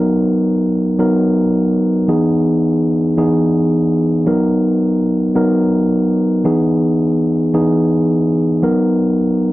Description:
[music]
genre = R&B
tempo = 110 BPM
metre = 4/4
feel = swing 64% on 16ths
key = B major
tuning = A4 = 440 Hz
[part]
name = mellow tine electric piano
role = solo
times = 0.0-9.5 s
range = E3 to A#4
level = -13 LUFS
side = equal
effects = none
[sound]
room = light reverb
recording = dry, close 1970s-style studio recording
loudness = -13 LUFS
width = side -17 dB against mid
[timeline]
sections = 0.0-9.5 A section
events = none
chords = 0.0 Bmaj7; 2.1 Emaj7; 4.3 Bmaj7; 6.4 Emaj7; 8.6 Bmaj7

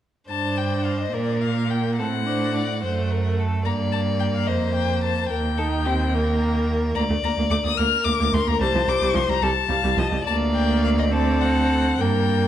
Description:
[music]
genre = quick classical-period movement for string quartet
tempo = 72 BPM (dotted quarters)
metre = 6/8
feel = rubato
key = G minor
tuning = A4 = 440 Hz
[part]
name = warm violin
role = melody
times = 0.3-12.5 s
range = D5 to F6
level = -27 LUFS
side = left 9 dB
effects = none
[part]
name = clear violin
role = second line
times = 0.3-12.5 s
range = G4 to F5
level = -27 LUFS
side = left 4 dB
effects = none
[part]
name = rich viola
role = accompaniment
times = 0.3-12.5 s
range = F3 to Eb4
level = -26 LUFS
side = right 1 dB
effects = none
[part]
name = clear cello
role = bass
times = 0.3-12.5 s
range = C2 to Bb2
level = -23 LUFS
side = right 3 dB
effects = none
[sound]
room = moderate recital hall reverb, RT60 1.6 s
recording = dark, warm production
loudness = -20 LUFS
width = side -11 dB against mid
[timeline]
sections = 0.3-12.5 A section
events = none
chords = 0.3 Gm; 2.0 D7/A; 3.7 Gm; 5.3 Eb; 7.0 Bb/D; 8.6 C5; 10.3 Ebmaj7/D (rootless); 11.1 D7

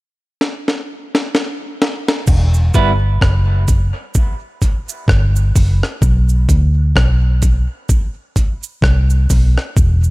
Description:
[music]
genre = dub reggae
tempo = 64 BPM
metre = 4/4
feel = swing 57% on 16ths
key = E minor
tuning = A4 = 440 Hz
[part]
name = breakbeat sampler-style drum kit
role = drums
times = 0.4-10.0 s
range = crash cymbal, hi-hat, kick drum, rim click, snare drum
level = -16 LUFS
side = equal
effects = none
[part]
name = vintage muted fingered electric bass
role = bass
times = 2.3-10.1 s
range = E1 to D2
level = -12 LUFS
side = equal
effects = none
[part]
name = cabasa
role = percussion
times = 2.3-10.1 s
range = none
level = -28 LUFS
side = right 8 dB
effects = none
[part]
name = clean electric guitar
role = accompaniment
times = 2.7-2.9 s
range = G3 to B4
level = -22 LUFS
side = right 4 dB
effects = dub echo
[sound]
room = digital ambience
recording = echo-heavy mix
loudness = -13 LUFS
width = side -21 dB against mid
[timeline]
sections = 0.0-2.3 A section; 2.3-10.1 B section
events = drum fill 0.4-2.3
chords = 0.0 N.C.; 2.3 Em; 6.0 Bm

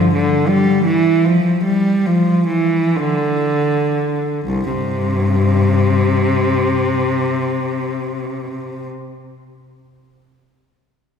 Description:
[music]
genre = classical, baroque-style suite movement for unaccompanied cello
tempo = 38-56 BPM (dotted quarters)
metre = 12/8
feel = rubato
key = C major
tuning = A4 = 440 Hz
[part]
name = warm cello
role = solo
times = 0.0-8.9 s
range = C2 to G3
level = -14 LUFS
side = left 1 dB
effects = none
[sound]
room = wet concert hall reverb, RT60 2.4 s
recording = recorded in a church or concert hall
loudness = -14 LUFS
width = side -7 dB against mid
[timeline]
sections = 0.0-4.5 A section; 4.5-10.5 B section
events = slowing down 0.0-4.5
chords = none

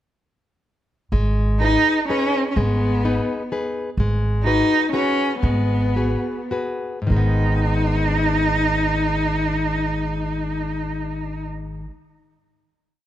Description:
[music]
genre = italian folk, Italian serenade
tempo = 99-128 BPM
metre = 3/4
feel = rubato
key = G# minor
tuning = A4 = 441 Hz
[part]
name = nylon-string guitar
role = accompaniment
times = 1.1-12.0 s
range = G#2 to B4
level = -25 LUFS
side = left 2 dB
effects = none
[part]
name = upright bass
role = bass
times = 1.1-11.9 s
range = G#1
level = -22 LUFS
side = right 1 dB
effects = none
[part]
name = warm cello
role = melody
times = 1.6-11.4 s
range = B3 to D#4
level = -21 LUFS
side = equal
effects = analog delay
[sound]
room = little or no reverb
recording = close, detailed microphones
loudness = -18 LUFS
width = side -12 dB against mid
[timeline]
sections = 1.1-7.1 A section; 7.1-10.7 final chord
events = slowing down 4.0-7.1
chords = 1.1 G#m; 4.0 G#m7; 7.1 G#m

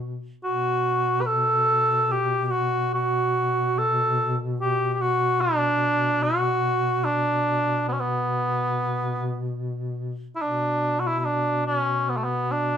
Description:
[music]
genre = caucasian folk, Caucasian lament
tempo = 72 BPM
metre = 3/4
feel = rubato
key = B minor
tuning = A4 = 440 Hz
[part]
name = mellow cor anglais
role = melody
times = 0.0-12.8 s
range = A3 to B4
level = -22 LUFS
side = right 1 dB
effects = none
[part]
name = mellow duduk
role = drone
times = 0.0-12.8 s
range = B2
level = -28 LUFS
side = left 1 dB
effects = none
[sound]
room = moderate studio reverb, RT60 0.9 s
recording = band playing live in one room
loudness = -21 LUFS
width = side -8 dB against mid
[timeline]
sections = 0.0-10.4 A section; 10.4-12.8 B section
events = none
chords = none

